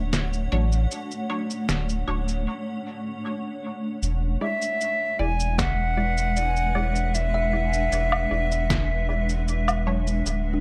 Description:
ambient dub; 77 BPM; 4/4; straight; E mixolydian; A4 = 439 Hz
granular cloud pad; sustained chords; 0.0-10.6 s; G#3 to F#5; -34 LUFS; equal; built-in reverb
warm sub bass; bass; 0.0-10.6 s; D1 to A1; -27 LUFS; equal
electronic snare drum, shaker and woodblock; drums; 0.1-10.4 s; -30 LUFS; equal
filtered dub chord stab; stabs; 0.5-10.6 s; F#3 to D5; -37 LUFS; equal; phaser, subtle chorus, dub echo
silver concert flute; melody; 4.4-9.9 s; E5 to G#5; -29 LUFS; equal; dub echo
electronic kick drum; drums; 5.6-8.9 s; -31 LUFS; equal
kalimba; arpeggios; 6.8-10.6 s; D4 to E5; -38 LUFS; equal
light reverb; -25 LUFS; mono
0.0-4.0 A section; 4.0-10.6 B section
break 2.5-4.0
0.0 Dmaj7; 4.0 E7
0.13 | 0.91 1.69 2.47 3.25 | 4.03 4.80 5.58 6.36 | 7.14 7.92 8.70 9.48 | 10.26

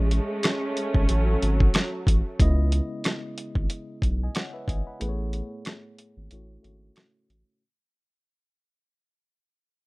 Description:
hip hop, boom-bap hip-hop; 92 BPM; 4/4; swing 54% on 16ths; C# minor; A4 = 440 Hz
warm studio string section; sustained chords; 0.0-2.4 s; F#3 to C#4; -29 LUFS; right 1 dB; high-pass filter, low-pass filter
saturated sub bass; bass; 0.0-7.4 s; G#1 to C#2; -23 LUFS; equal
dusty soul sampler-style drum kit; drums; 0.1-7.5 s; hi-hat, kick drum, rim click, snare drum; -24 LUFS; equal
tine electric piano; accompaniment; 2.4-7.6 s; A2 to B5; -36 LUFS; equal; medium stereo tremolo, high-pass filter, low-pass filter
little or no reverb; rough home demo mix; -23 LUFS; side -24 dB against mid
0.0-2.4 A section; 2.4-7.6 B section
break 0.0-2.4, 5.0-7.6; fade-out 2.4-7.6; filter sweep on tine electric piano 2.4-7.6
0.0 Amaj7; 1.1 F#m; 2.4 C#m7; 5.0 Amaj7; 6.3 F#m
0.44 1.09 1.75 | 2.40 3.05 3.70 4.35 | 5.01 5.66 6.31 6.96

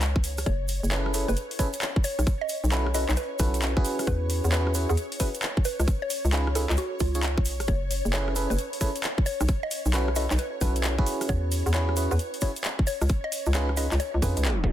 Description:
UK garage, two-step garage; 133 BPM; 4/4; swing 65% on 16ths; F# dorian; A4 = 440 Hz
mallet-like synth pluck; melody; 0.0-14.7 s; E#4 to D#5; -34 LUFS; equal; chorus, phaser, tape echo
ethereal airy pad; sustained chords; 0.1-14.7 s; C#5; -38 LUFS; left 1 dB; ensemble chorus, built-in reverb, tremolo, sidechain pumping
hollow knocking FM bass; bass; 0.0-14.7 s; F#1 to E#2; -26 LUFS; equal
garage drum kit; drums; 0.0-14.7 s; handclaps, hi-hat, rim click; -32 LUFS; left 1 dB
egg shaker; percussion; 0.0-14.7 s; -38 LUFS; right 5 dB
electronic kick drum; drums; 0.2-14.7 s; -25 LUFS; equal
FM electric piano; stabs; 0.9-14.7 s; C#4 to C#5; -31 LUFS; right 2 dB; chorus, tape echo
digital ambience; dense, heavily limited modern master, tape stop; -24 LUFS; side -12 dB against mid
0.0-14.7 A section
tape stop 14.4
0.5 F#m11; 2.0 B9sus4; 3.8 E69; 5.7 C#9; 7.7 F#m11; 9.3 B9sus4; 11.1 E69; 12.9 C#9
0.01 | 0.46 0.91 1.36 1.82 | 2.27 2.72 3.17 3.62 | 4.07 4.52 4.97 5.42 | 5.88 6.33 6.78 7.23 | 7.68 8.13 8.58 9.03 | 9.49 9.94 10.39 10.84 | 11.29 11.74 12.19 12.64 | 13.10 13.55 14.00 14.45

